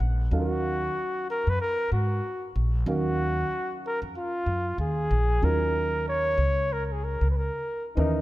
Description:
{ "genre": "hip hop", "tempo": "94 BPM", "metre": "4/4", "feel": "swing 61% on 16ths", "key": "Eb minor", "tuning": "A4 = 440 Hz", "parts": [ { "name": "dark concert grand piano", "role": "accompaniment", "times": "0.0-8.2 s", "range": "Fb3 to F5", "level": "-33 LUFS", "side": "right 4 dB", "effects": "none" }, { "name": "upright bass", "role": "bass", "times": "0.0-8.2 s", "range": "Bb1 to Ab2", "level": "-26 LUFS", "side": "equal", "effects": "none" }, { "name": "mellow flugelhorn", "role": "melody", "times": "0.4-7.9 s", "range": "F4 to Db5", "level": "-28 LUFS", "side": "equal", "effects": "none" }, { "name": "breathy trombone", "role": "second line", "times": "8.0-8.2 s", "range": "Eb4", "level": "-28 LUFS", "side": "left 4 dB", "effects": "none" } ], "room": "light reverb", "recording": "none", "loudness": "-24 LUFS", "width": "side -16 dB against mid", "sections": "0.0-5.4 A section; 5.4-8.2 B section", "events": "none", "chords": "0.3 Ebm9" }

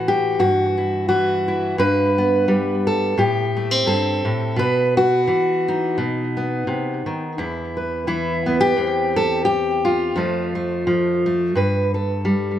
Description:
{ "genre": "folk, solo fingerstyle acoustic guitar", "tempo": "86 BPM", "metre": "4/4", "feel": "swing 55% on 8ths", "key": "E minor", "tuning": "A4 = 442 Hz", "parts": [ { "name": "fingerpicked steel-string acoustic guitar", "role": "solo", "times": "0.0-12.6 s", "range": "E2 to B4", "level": "-18 LUFS", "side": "equal", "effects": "tape echo" } ], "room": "light reverb", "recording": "none", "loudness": "-18 LUFS", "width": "side -11 dB against mid", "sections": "0.0-7.4 A section; 7.4-12.6 B section", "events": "none", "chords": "0.4 Em/G; 1.8 G; 3.2 Am; 4.6 Bsus4; 6.0 B; 7.4 E5; 8.8 C/E; 10.2 F; 11.6 G" }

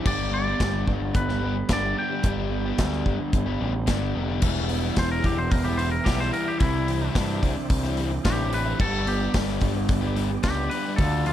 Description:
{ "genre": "indie rock", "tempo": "110 BPM", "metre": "4/4", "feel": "straight", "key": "G major", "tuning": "A4 = 442 Hz", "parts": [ { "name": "twangy electric guitar", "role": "melody", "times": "0.0-11.3 s", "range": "E4 to G5", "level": "-30 LUFS", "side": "equal", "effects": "spring reverb, plate reverb, digital delay" }, { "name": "overdriven electric guitar", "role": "riff", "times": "0.0-11.3 s", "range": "E2 to G4", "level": "-30 LUFS", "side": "left 10 dB", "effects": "none" }, { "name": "overdriven electric guitar", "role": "riff", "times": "0.0-11.3 s", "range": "C3 to E4", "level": "-30 LUFS", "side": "right 7 dB", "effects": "wide subtle chorus" }, { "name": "growling picked electric bass", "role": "bass", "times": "0.1-11.3 s", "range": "E1 to G2", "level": "-28 LUFS", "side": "equal", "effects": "overdrive" }, { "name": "big rock drum kit", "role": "drums", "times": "0.1-11.3 s", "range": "crash cymbal, hi-hat, kick drum, snare drum", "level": "-26 LUFS", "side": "equal", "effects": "none" }, { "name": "tonewheel organ", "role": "sustained chords", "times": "4.4-11.3 s", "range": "A4 to E6", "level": "-40 LUFS", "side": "right 1 dB", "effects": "slow rotary speaker, chorus vibrato, plate reverb" } ], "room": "little or no reverb", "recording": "dark, warm production", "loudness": "-22 LUFS", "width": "side -11 dB against mid", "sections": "0.0-4.4 A section; 4.4-11.3 B section", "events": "clean electric guitar solo 4.4-11.3", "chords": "0.1 G; 4.4 Em; 6.6 Cadd9; 8.8 G" }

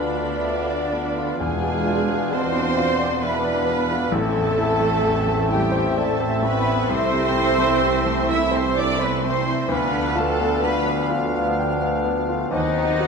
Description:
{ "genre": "classical, romantic movement for piano and orchestra", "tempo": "65 BPM", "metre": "3/4", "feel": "rubato", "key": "A minor", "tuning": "A4 = 440 Hz", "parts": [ { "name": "warm grand piano", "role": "melody", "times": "0.0-13.1 s", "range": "A1 to G5", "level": "-25 LUFS", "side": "left 3 dB", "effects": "none" }, { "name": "warm studio violin section", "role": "melody", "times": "0.0-13.1 s", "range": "D5 to B5", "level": "-36 LUFS", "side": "left 4 dB", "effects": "none" }, { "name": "clear clarinet", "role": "second line", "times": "0.0-13.1 s", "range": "C4 to D#4", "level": "-32 LUFS", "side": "equal", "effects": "none" }, { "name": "clear oboe", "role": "second line", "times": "0.0-13.1 s", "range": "E5 to F#5", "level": "-33 LUFS", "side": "right 3 dB", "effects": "none" }, { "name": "concert flute", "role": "second line", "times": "0.0-13.1 s", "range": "D5 to E6", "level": "-30 LUFS", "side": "left 1 dB", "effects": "none" }, { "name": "warm studio violin section", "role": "second line", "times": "0.0-13.1 s", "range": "D5 to E6", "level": "-31 LUFS", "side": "left 2 dB", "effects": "none" }, { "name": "dark bassoon", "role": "accompaniment", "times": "0.0-13.1 s", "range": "A3 to B#3", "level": "-30 LUFS", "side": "left 1 dB", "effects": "none" }, { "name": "rich studio viola section", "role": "accompaniment", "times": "0.0-13.1 s", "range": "D4 to E5", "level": "-26 LUFS", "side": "right 3 dB", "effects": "none" }, { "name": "bright trombone section", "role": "sustained chords", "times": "0.0-13.1 s", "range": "D3 to B3", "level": "-32 LUFS", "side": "right 3 dB", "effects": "none" }, { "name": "mellow French horn section", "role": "sustained chords", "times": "0.0-13.1 s", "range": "C4 to F4", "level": "-30 LUFS", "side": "left 2 dB", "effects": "none" }, { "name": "dark studio double bass section", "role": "bass", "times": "0.0-13.1 s", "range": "A1 to E2", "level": "-31 LUFS", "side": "right 3 dB", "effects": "none" }, { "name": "dark tuba", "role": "bass", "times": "0.0-13.1 s", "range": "E1 to D#2", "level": "-30 LUFS", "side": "right 4 dB", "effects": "none" }, { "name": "warm studio cello section", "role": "bass", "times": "0.0-13.1 s", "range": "D3 to E4", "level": "-30 LUFS", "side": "right 2 dB", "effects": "none" }, { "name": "timpani", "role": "percussion", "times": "1.4-2.7 s", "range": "E2", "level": "-35 LUFS", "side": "left 1 dB", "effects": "none" } ], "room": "wet concert hall reverb, RT60 1.9 s", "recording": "minimal, uncompressed stereo recording", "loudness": "-19 LUFS", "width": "side -5 dB against mid", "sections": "0.0-13.1 A section", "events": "none", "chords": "0.0 Bdim/D; 1.4 E7b9; 4.1 Am; 6.9 Am/C; 9.7 Bdim/D; 12.5 D#m6" }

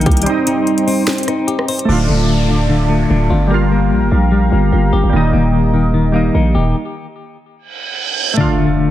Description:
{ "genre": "hip hop, trap", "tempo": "148 BPM", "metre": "4/4", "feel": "half-time", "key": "D phrygian", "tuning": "A4 = 445 Hz", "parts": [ { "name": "glassy digital keys", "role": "accompaniment", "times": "0.0-8.9 s", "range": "G3 to F4", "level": "-19 LUFS", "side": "right 3 dB", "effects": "chorus" }, { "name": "warm analog pad", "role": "sustained chords", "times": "0.0-6.7 s", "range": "Eb4 to Bb5", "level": "-23 LUFS", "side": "right 1 dB", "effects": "chorus" }, { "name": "clean electric guitar", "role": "arpeggios", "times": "0.0-8.9 s", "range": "D3 to C5", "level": "-17 LUFS", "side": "left 4 dB", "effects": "tremolo, tape echo" }, { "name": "growling 808-style bass", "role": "bass", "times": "0.0-6.7 s", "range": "D1 to C2", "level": "-15 LUFS", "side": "right 1 dB", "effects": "none" }, { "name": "trap drum kit", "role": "drums", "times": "0.0-1.9 s", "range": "hi-hat, kick drum, rim click, snare drum", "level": "-18 LUFS", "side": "equal", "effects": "none" }, { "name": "downlifter, reverse cymbal and impact", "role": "sound effects", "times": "1.9-8.9 s", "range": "none", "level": "-22 LUFS", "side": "right 2 dB", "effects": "none" } ], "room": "light reverb, digital ambience", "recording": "dense, heavily limited modern master", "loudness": "-12 LUFS", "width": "side -13 dB against mid", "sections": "0.0-1.9 A section; 1.9-8.4 B section", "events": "break 0.3-1.9; stop 6.8-8.4; reverse cymbal 7.7-8.4; impact 8.4-8.9", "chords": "0.3 Cm; 1.9 Dm; 3.5 Gm7; 5.1 Eb; 6.8 N.C.; 8.4 Dm" }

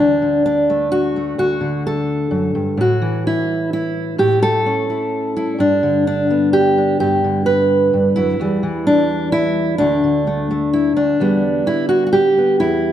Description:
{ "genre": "folk, solo fingerstyle acoustic guitar", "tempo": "128 BPM", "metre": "3/4", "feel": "straight", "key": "D major", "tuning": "A4 = 439 Hz", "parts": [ { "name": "fingerpicked steel-string acoustic guitar", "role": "solo", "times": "0.0-12.9 s", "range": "D2 to B4", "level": "-14 LUFS", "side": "equal", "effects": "none" } ], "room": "moderate recital hall reverb, RT60 1.6 s", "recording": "none", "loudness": "-14 LUFS", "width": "side -10 dB against mid", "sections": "0.0-11.2 A section; 11.2-12.9 B section", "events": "none", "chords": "0.0 D; 2.8 A; 5.6 G; 8.4 Em; 9.8 D5; 11.2 Em7" }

